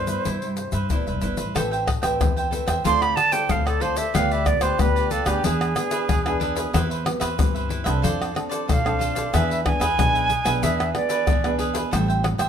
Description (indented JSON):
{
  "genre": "samba and choro",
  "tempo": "92 BPM",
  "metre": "4/4",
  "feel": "straight",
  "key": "A minor",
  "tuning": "A4 = 438 Hz",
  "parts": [
    { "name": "silver concert flute", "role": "melody", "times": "0.0-11.6 s", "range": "G4 to C6", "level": "-23 LUFS", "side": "right 2 dB", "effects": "none" },
    { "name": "cavaquinho", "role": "accompaniment", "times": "0.0-12.5 s", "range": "D4 to G5", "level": "-28 LUFS", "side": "right 3 dB", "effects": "none" },
    { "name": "nylon-string guitar", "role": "accompaniment", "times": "0.0-12.5 s", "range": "G2 to B4", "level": "-29 LUFS", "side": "equal", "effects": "none" },
    { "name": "upright bass", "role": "bass", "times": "0.0-12.5 s", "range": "D1 to G2", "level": "-27 LUFS", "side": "equal", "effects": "none" },
    { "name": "tube shaker, pandeiro, surdo and tamborim", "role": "percussion", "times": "0.1-12.5 s", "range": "none", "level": "-24 LUFS", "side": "left 2 dB", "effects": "none" }
  ],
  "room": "moderate studio reverb, RT60 0.7 s",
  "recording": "minimal, uncompressed stereo recording",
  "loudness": "-20 LUFS",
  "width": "side -8 dB against mid",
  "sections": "0.0-1.6 A section; 1.6-12.5 B section",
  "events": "flute solo 1.6-12.5",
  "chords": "0.0 Cmaj7; 1.6 Am9; 2.9 Dm7; 4.1 G7/D; 5.4 E7; 6.7 Cmaj7/E; 8.0 Dm7/F; 9.3 E7; 11.9 Am7",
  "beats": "0.26 0.91 | 1.55 2.20 2.85 3.50 | 4.15 4.80 5.45 6.09 | 6.74 7.39 8.04 8.69 | 9.34 9.98 10.63 11.28 | 11.93"
}